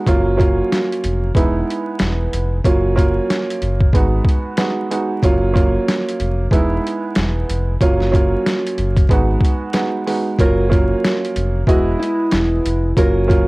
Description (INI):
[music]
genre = hip hop, boom-bap hip-hop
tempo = 93 BPM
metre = 4/4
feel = swing 60% on 16ths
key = F# major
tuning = A4 = 440 Hz
[part]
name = warm upright piano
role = accompaniment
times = 0.0-13.5 s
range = F#3 to D#5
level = -19 LUFS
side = right 2 dB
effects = cassette tape, high-pass filter, low-pass filter
[part]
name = sub bass with octave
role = bass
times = 0.1-13.5 s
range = E1 to G#1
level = -19 LUFS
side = equal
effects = none
[part]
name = boom bap sampler-style drum kit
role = drums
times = 0.1-13.5 s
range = hi-hat, kick drum, snare drum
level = -17 LUFS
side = equal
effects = cassette tape
[part]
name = nylon-string guitar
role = melody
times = 10.4-13.5 s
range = E4 to A#4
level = -21 LUFS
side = equal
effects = high-pass filter, low-pass filter
[sound]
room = studio reverb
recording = home recording on cassette, vinyl crackle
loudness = -15 LUFS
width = side -22 dB against mid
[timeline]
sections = 0.0-10.4 A section; 10.4-13.5 B section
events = none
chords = 0.1 F#maj7; 1.4 Emaj7; 2.6 F#maj7; 3.9 G#m7; 5.2 F#maj7; 6.5 Emaj7; 7.8 F#maj7; 9.1 G#m7; 10.4 F#maj7; 11.7 Emaj7; 13.0 F#maj7